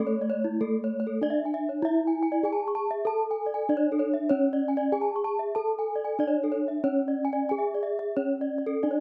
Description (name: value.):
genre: gamelan.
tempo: 88-97 BPM.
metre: 4/4.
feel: straight.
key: C# pelog.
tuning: A4 = 440 Hz.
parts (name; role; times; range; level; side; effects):
gamelan-type bronze metallophone; melody; 0.0-9.0 s; A3 to A4; -30 LUFS; equal; none.
gamelan-type bronze metallophone; arpeggios; 0.0-9.0 s; E4 to C#6; -32 LUFS; equal; none.
room: little or no reverb.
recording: recorded outdoors, with no room sound.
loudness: -28 LUFS.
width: mono.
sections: 0.0-9.0 A section.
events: none.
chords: none.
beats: 0.60 1.22 | 1.83 2.45 3.06 3.68 | 4.30 4.92 5.54 6.18 | 6.83 7.48 8.15 8.82.